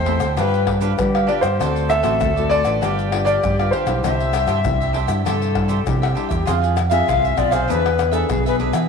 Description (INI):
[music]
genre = samba and choro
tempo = 99 BPM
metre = 4/4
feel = straight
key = C major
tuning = A4 = 440 Hz
[part]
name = warm grand piano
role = melody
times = 0.0-5.8 s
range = B4 to G5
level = -22 LUFS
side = equal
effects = none
[part]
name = breathy alto recorder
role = second line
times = 0.0-8.6 s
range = G4 to F5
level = -23 LUFS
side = left 7 dB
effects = none
[part]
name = cavaquinho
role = accompaniment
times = 0.0-8.9 s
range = D4 to F5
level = -25 LUFS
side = right 11 dB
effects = none
[part]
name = nylon-string guitar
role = accompaniment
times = 0.0-8.9 s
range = A2 to B4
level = -26 LUFS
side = left 8 dB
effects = none
[part]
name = overdriven fingered electric bass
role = bass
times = 0.0-8.9 s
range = G1 to G3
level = -22 LUFS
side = right 2 dB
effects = none
[part]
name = pandeiro, egg shaker, tamborim and surdo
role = percussion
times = 0.1-8.9 s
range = none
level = -25 LUFS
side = left 4 dB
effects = none
[sound]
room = moderate echo chamber reverb, RT60 2.0 s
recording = 1960s-style stereo with parts hard left and right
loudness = -16 LUFS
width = side -5 dB against mid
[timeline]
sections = 0.0-6.5 A section; 6.5-8.9 B section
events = drum fill 6.0-6.5; recorder solo 6.5-8.9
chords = 0.4 G7; 1.6 D7; 2.8 G7; 4.0 Cadd9; 6.5 Fm; 7.7 E7